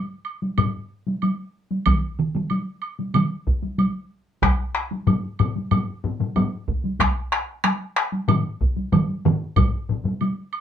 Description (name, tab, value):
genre	japanese traditional, taiko drum ensemble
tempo	93 BPM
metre	4/4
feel	straight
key	none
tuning	none
part	woodblock	percussion	0.2-10.6 s	none	-28 LUFS	right 6 dB	none
part	taiko ensemble	percussion	0.4-10.4 s	none	-24 LUFS	equal	none
part	taiko ensemble	percussion	0.6-10.2 s	none	-23 LUFS	left 5 dB	none
part	taiko ensemble	percussion	1.9-9.4 s	none	-23 LUFS	right 5 dB	none
part	taiko ensemble	percussion	1.9-9.7 s	none	-23 LUFS	right 1 dB	none
room	wet studio ambience, RT60 0.5 s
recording	band playing live in one room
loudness	-21 LUFS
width	side -9 dB against mid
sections	0.0-10.6 A section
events	none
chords	none